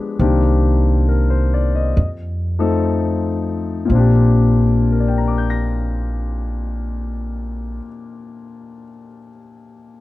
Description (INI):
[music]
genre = jazz ballad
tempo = 59-70 BPM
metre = 4/4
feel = swing 66% on 8ths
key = Bb major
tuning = A4 = 439 Hz
[part]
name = warm baby grand piano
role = accompaniment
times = 0.0-10.0 s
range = Bb2 to Bb6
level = -20 LUFS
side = left 5 dB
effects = none
[part]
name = upright bass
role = bass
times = 0.2-7.8 s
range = Bb1 to F2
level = -17 LUFS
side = equal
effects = none
[sound]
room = little or no reverb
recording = dry, close 1970s-style studio recording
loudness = -15 LUFS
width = side -16 dB against mid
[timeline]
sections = 0.2-3.9 A section; 3.9-7.9 B section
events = slowing down 0.0-3.9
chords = 0.2 Cm9; 2.0 F7; 3.9 Bb69